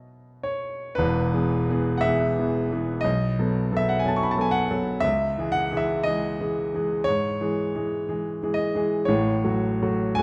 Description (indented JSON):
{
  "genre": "classical, romantic nocturne for solo piano",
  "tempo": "52-61 BPM",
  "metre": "4/4",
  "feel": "rubato",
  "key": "E major",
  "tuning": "A4 = 440 Hz",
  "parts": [
    { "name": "warm grand piano", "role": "solo", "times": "0.0-10.2 s", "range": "E1 to C#6", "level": "-24 LUFS", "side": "equal", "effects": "none" }
  ],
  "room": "wet recital hall reverb, RT60 1.6 s",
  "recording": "none",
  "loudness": "-25 LUFS",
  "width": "mono",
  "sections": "1.0-10.2 A section",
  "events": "none",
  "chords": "0.0 B; 1.0 E; 3.1 B5; 5.0 C#m; 9.1 F#m/A"
}